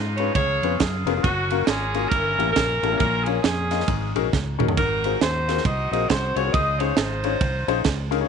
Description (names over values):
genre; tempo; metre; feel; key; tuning
uptempo gospel; 136 BPM; 4/4; swing 61% on 8ths; Db major; A4 = 441 Hz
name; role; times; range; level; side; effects
edgy saxophone section; melody; 0.0-8.1 s; Bb3 to Eb5; -24 LUFS; right 1 dB; none
warm concert grand piano; accompaniment; 0.0-8.3 s; G2 to Eb5; -26 LUFS; left 14 dB; none
fingered electric bass; bass; 0.0-8.2 s; F1 to Ab2; -27 LUFS; equal; none
tight funk drum kit; drums; 0.2-8.2 s; kick drum, ride cymbal, snare drum, toms; -25 LUFS; right 5 dB; none
room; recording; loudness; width
light reverb, studio reverb; 1960s-style stereo, nothing above 11.0 kHz; -20 LUFS; side -6 dB against mid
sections
0.0-8.3 A section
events
drum fill 4.3-4.8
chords
0.4 Db7; 1.2 Gbmaj7; 2.1 Gdim7; 3.0 Bbm; 3.9 Ab9sus4; 4.8 Ab13; 6.5 Dbmaj9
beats
0.36 0.80 | 1.24 1.68 2.12 2.56 | 3.01 3.45 3.89 4.33 | 4.77 5.21 5.65 6.09 | 6.53 6.97 7.41 7.85